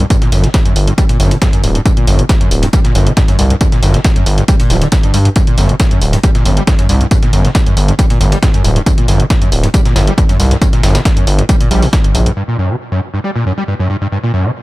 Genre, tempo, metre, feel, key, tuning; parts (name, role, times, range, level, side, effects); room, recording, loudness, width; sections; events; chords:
driving peak-time techno; 137 BPM; 4/4; straight; G harmonic minor; A4 = 441 Hz
screaming distorted acid line; riff; 0.0-14.5 s; G1 to G3; -16 LUFS; equal; distortion, ensemble chorus, vintage 12-bit sampler grit, sidechain pumping, tape echo
gritty driven synth bass; bass; 0.0-12.3 s; D1 to G2; -12 LUFS; equal; sidechain pumping
electronic hi-hat; drums; 0.0-12.3 s; -22 LUFS; right 1 dB; sidechain pumping on hats
dusty soul sampler-style drum kit; drums; 0.1-12.3 s; hi-hat, snare drum, tambourine; -25 LUFS; equal; sidechain pumping on perc, high-pass filter on perc, high-pass filter on snare, sidechain pumping on hats, high-pass filter on hats, high-pass filter on room
electronic kick drum; drums; 0.1-12.0 s; -12 LUFS; equal
little or no reverb; -9 LUFS; side -19 dB against mid
0.0-12.4 A section; 12.4-14.6 B section
0.0 Gm